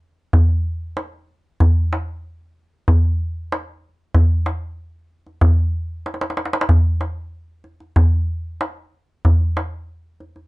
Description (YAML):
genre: arabic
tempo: 94 BPM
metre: 4/4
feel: straight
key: none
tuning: none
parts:
  - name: darbuka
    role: percussion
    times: 0.3-10.4 s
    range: none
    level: -16 LUFS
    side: equal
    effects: none
room: light reverb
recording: nothing above 10.5 kHz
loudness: -17 LUFS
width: side -22 dB against mid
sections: 0.0-6.7 A section; 6.7-10.5 B section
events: drum fill 6.1-6.7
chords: none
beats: 0.32 0.96 | 1.60 2.23 2.87 3.51 | 4.14 4.78 5.42 6.06 | 6.69 7.33 7.97 8.61 | 9.24 9.88